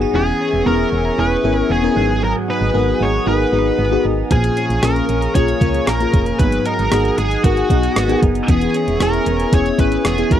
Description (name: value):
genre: 1980s-style pop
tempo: 115 BPM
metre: 4/4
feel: straight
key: unclear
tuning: A4 = 438 Hz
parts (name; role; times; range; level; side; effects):
- FM electric piano with soft pad layer; accompaniment; 0.0-10.4 s; G#2 to B4; -19 LUFS; left 3 dB; chorus, phaser
- chorused pulse-width pad; sustained chords; 0.0-10.4 s; G#4 to D#6; -26 LUFS; left 2 dB; none
- direct-recorded clean electric guitar; riff; 0.0-10.4 s; E#3 to G#4; -24 LUFS; right 5 dB; analog chorus
- solid FM bass; bass; 0.0-10.4 s; E1 to C#2; -20 LUFS; equal; none
- high-gain lead guitar; melody; 0.2-10.4 s; F#4 to C#5; -20 LUFS; equal; distortion
- clean 12-bit digital drum machine; drums; 4.3-10.4 s; hi-hat, kick drum, rim click; -17 LUFS; equal; none
room: little or no reverb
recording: dry, close 1970s-style studio recording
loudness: -14 LUFS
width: side -10 dB against mid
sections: 0.0-10.4 A section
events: none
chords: 0.1 E6; 2.0 G#m7; 4.3 A#m7; 6.4 G#m7; 8.5 E6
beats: | 0.14 0.66 1.18 1.70 | 2.22 2.75 3.27 3.79 | 4.31 4.83 5.36 5.88 | 6.40 6.92 7.44 7.96 | 8.48 9.01 9.53 10.05